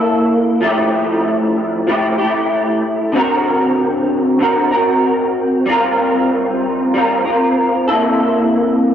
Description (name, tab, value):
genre	indie pop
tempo	95 BPM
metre	4/4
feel	swing 55% on 16ths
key	F major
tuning	A4 = 440 Hz
part	electric guitar through a small old amp	solo	0.0-8.9 s	C3 to Bb4	-13 LUFS	equal	ensemble chorus, vibrato effect
room	wet booth ambience, RT60 0.2 s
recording	home recording on cassette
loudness	-13 LUFS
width	side -9 dB against mid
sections	0.0-8.9 A section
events	none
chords	0.0 C6 (rootless); 0.6 Fmaj9; 3.1 D7b13; 5.7 Gm7; 7.9 C6